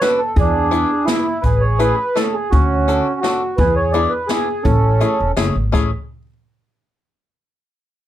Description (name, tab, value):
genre	musette waltz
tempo	168 BPM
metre	3/4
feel	rubato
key	A major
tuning	A4 = 441 Hz
part	mellow accordion	melody	0.0-5.3 s	C#4 to D5	-17 LUFS	right 2 dB	none
part	bluegrass banjo	accompaniment	0.0-5.9 s	A3 to A4	-22 LUFS	left 6 dB	none
part	jazz brush drum kit	drums	0.0-5.8 s	hi-hat, kick drum, snare drum, splash cymbal	-22 LUFS	equal	none
part	upright bass	bass	0.4-5.9 s	E1 to E2	-17 LUFS	equal	none
room	light reverb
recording	none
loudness	-14 LUFS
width	side -12 dB against mid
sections	0.0-5.7 A section; 5.7-6.8 B section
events	none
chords	0.4 E7; 1.4 Amaj7; 2.5 Dmaj7; 3.6 E7; 4.6 Amaj7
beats	0.01 | 0.36 0.71 1.08 | 1.44 1.80 2.16 | 2.52 2.88 3.23 | 3.58 3.94 4.29 | 4.65 5.00 5.36 | 5.73